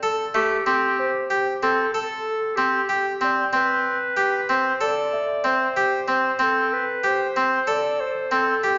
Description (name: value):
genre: contemporary instrumental, chamber music in an uneven meter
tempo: 188 BPM (eighths)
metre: 9/8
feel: straight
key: A minor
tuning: A4 = 439 Hz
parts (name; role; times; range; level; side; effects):
- clear clarinet; melody; 0.0-8.7 s; G4 to D5; -28 LUFS; equal; none
- harpsichord; arpeggios; 0.0-8.8 s; A3 to A4; -23 LUFS; equal; none
- small celesta; texture; 0.0-5.9 s; C5 to G5; -35 LUFS; equal; none
room: wet concert hall reverb, RT60 1.7 s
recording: nothing above 7.5 kHz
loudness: -22 LUFS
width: mono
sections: 0.7-8.8 A section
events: none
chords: 0.0 N.C.; 0.7 Am7; 3.5 C5; 4.8 D5